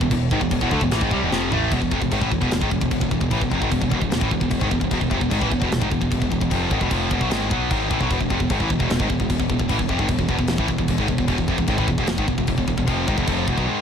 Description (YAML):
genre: heavy metal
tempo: 150 BPM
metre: 4/4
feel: straight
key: unclear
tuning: A4 = 440 Hz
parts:
  - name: cranked stack guitar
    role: riff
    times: 0.0-1.7 s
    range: E2 to A3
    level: -25 LUFS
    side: equal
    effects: overdrive
  - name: high-gain distorted guitar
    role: riff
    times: 0.0-13.8 s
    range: E2 to B3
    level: -25 LUFS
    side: left 12 dB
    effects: distortion
  - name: high-gain distorted guitar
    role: riff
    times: 0.0-13.8 s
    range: E2 to B3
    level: -24 LUFS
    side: right 11 dB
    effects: distortion
  - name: growling picked electric bass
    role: bass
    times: 0.0-13.7 s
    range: E1 to D2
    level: -26 LUFS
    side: equal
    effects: overdrive
  - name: tight metal drum kit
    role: drums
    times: 0.0-13.7 s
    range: china cymbal, kick drum, snare drum, toms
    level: -25 LUFS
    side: equal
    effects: none
room: little or no reverb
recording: none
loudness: -19 LUFS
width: side -7 dB against mid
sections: 0.0-1.7 A section; 1.7-13.8 B section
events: drum fill 1.3-1.7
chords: 0.0 E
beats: | 0.11 0.51 0.91 1.31 | 1.71 2.11 2.52 2.92 | 3.32 3.72 4.12 4.52 | 4.92 5.32 5.71 6.11 | 6.51 6.91 7.31 7.71 | 8.11 8.50 8.90 9.30 | 9.70 10.10 10.49 10.89 | 11.29 11.69 12.09 12.48 | 12.88 13.28 13.68